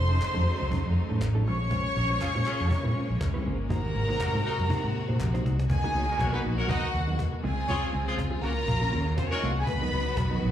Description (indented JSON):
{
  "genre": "disco",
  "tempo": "121 BPM",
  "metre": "4/4",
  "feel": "swing 56% on 16ths",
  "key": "unclear",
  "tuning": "A4 = 440 Hz",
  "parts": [
    { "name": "warm symphonic violin section", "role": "second line", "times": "0.0-10.4 s", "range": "C4 to Db6", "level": "-32 LUFS", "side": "equal", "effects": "slapback echo" },
    { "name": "clear symphonic string section", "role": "sustained chords", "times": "0.0-10.5 s", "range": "Cb3 to Gb4", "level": "-35 LUFS", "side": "left 2 dB", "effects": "none" },
    { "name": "vintage muted fingered electric bass", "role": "bass", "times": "0.0-10.5 s", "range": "F1 to Bb2", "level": "-27 LUFS", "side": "equal", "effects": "none" },
    { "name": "mellow electric guitar", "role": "accompaniment", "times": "0.1-10.5 s", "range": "Gb3 to Db5", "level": "-36 LUFS", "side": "right 5 dB", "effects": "slapback echo" },
    { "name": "cajon", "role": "drums", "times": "0.2-10.3 s", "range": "none", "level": "-33 LUFS", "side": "equal", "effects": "none" },
    { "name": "group handclap", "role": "percussion", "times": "0.2-5.3 s", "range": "none", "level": "-44 LUFS", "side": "left 2 dB", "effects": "slapback echo" },
    { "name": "warm horn section", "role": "stabs", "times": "2.2-9.5 s", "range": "Bb3 to Eb5", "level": "-33 LUFS", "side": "left 2 dB", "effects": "slapback echo" }
  ],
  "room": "light reverb",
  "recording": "live gig heard through the venue's PA, club reverb",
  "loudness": "-25 LUFS",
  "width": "side -10 dB against mid",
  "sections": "0.0-5.7 A section; 5.7-10.5 B section",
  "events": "drum fill 5.2-5.7",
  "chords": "0.0 F7b9b13; 1.5 Bbm9; 3.7 Ab9; 5.7 Cbmaj7/Db; 6.7 Abm9/Db; 7.4 Dbmaj7; 8.4 Gbmaj7; 9.7 Cbmaj7/Db",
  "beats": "0.22 0.72 1.22 | 1.71 2.21 2.71 3.21 | 3.71 4.20 4.70 5.20 | 5.70 6.19 6.69 7.19 | 7.68 8.18 8.68 9.18 | 9.67 10.17"
}